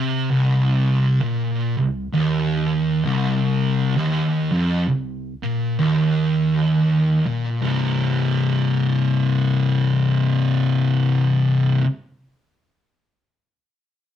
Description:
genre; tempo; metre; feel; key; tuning
metal; 65 BPM; 4/4; swing 61% on 8ths; C minor; A4 = 440 Hz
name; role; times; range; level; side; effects
fuzz guitar; solo; 0.0-11.8 s; C2 to C3; -17 LUFS; equal; distortion
room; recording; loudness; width
light reverb; rough rehearsal-room recording; -17 LUFS; side -10 dB against mid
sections
0.0-7.6 A section; 7.6-11.3 B section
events
none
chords
0.0 Cm; 7.6 C5

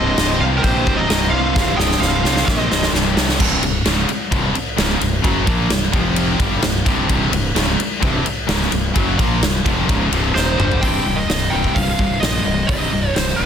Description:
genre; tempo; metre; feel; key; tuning
hard rock; 129 BPM; 4/4; straight; C phrygian; A4 = 439 Hz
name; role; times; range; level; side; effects
lead guitar through a small cranked amp; melody; 0.0-2.9, 10.4-13.5 s; Bb4 to G5; -22 LUFS; right 3 dB; overdrive, digital delay
octave-fuzz lead guitar; second line; 0.0-2.9 s; G4 to Eb5; -27 LUFS; right 2 dB; distortion
distorted electric guitar; riff; 0.0-13.5 s; C2 to Bb3; -24 LUFS; left 1 dB; overdrive
overdriven electric guitar; riff; 0.0-13.5 s; C2 to Bb3; -24 LUFS; right 9 dB; none
tight distorted guitar; riff; 0.0-13.5 s; C2 to Bb3; -24 LUFS; left 11 dB; distortion
fuzz fingered electric bass; bass; 0.0-13.5 s; C1 to C2; -22 LUFS; equal; overdrive
huge arena drum kit; drums; 0.2-13.3 s; crash cymbal, hi-hat, kick drum, ride cymbal, snare drum, toms; -19 LUFS; equal; none
room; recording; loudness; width
small room reverb; dense, heavily limited modern master; -15 LUFS; side -8 dB against mid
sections
0.0-3.4 A section; 3.4-10.8 B section; 10.8-13.5 C section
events
drum fill 1.6-3.4, 10.4-10.8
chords
0.0 Cm; 3.4 C5; 5.9 F5; 6.4 Cm

